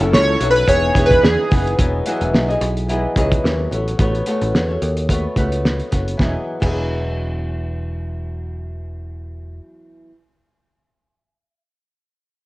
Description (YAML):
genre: indie pop, bedroom pop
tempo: 109 BPM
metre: 4/4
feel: swing 55% on 16ths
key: E major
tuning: A4 = 440 Hz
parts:
  - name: nylon-string guitar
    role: accompaniment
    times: 0.0-10.2 s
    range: E3 to D#5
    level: -23 LUFS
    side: left 1 dB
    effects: wide subtle chorus, warbly pitch drift, cassette tape
  - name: warm analog pad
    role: sustained chords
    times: 0.0-1.8 s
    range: E3 to A4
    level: -30 LUFS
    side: right 1 dB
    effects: none
  - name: picked electric bass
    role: bass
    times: 0.0-9.6 s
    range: E1 to E2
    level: -22 LUFS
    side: equal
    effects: none
  - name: cloth-damped thuddy drum kit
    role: drums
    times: 0.0-6.8 s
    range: crash cymbal, hi-hat, kick drum, snare drum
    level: -19 LUFS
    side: equal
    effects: cassette tape
  - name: chorused retro synth keys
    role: melody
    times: 0.1-1.8 s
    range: G#4 to C#5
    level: -16 LUFS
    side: equal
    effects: lush chorus
room: light reverb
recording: home recording on cassette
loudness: -16 LUFS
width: side -19 dB against mid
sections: 0.0-1.8 A section; 1.8-6.2 B section; 6.2-8.4 C section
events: synth keys solo 0.0-1.8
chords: 0.0 F#m7; 0.7 Emaj7; 1.8 Emaj9; 3.7 A69; 6.2 Emaj9